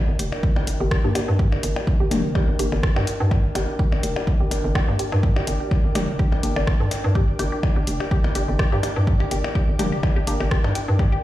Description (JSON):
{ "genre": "minimal techno", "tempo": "125 BPM", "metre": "4/4", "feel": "swing 55% on 16ths", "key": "G minor", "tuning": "A4 = 440 Hz", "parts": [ { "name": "flickering grainy texture", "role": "texture", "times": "0.2-11.2 s", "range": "D5", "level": "-38 LUFS", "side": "right 1 dB", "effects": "built-in reverb, sidechain pumping" }, { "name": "warbly tape-like pad", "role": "texture", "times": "0.0-11.2 s", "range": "D4 to G5", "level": "-31 LUFS", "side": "equal", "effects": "chorus, built-in reverb, sidechain pumping" }, { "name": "hollow knocking FM bass", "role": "bass", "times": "0.1-11.1 s", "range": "F1 to G2", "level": "-23 LUFS", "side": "equal", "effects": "sidechain pumping" }, { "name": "resonant blip pluck", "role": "riff", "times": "0.2-11.2 s", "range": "G4 to D5", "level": "-32 LUFS", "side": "equal", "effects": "chorus, phaser, sidechain pumping, dub echo" }, { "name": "punchy analog drum machine", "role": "drums", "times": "0.2-10.9 s", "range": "hi-hat, rim click", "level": "-31 LUFS", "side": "equal", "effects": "overdrive, studio reverb" }, { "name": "electronic percussion blips and toms", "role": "percussion", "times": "0.3-11.1 s", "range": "none", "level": "-29 LUFS", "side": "left 2 dB", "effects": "studio reverb, dub echo" }, { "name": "electronic kick drum", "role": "drums", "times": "0.4-11.1 s", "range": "none", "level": "-20 LUFS", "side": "equal", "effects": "overdrive, studio reverb" }, { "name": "filtered dub chord stab", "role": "stabs", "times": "1.0-10.3 s", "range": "Bb3 to G4", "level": "-32 LUFS", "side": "left 1 dB", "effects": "phaser, dub echo" } ], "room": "light reverb", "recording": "played on a big sound system in a bare room, large studio reverb", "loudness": "-19 LUFS", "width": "side -14 dB against mid", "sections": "0.0-11.2 A section", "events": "none", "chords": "0.0 Gm" }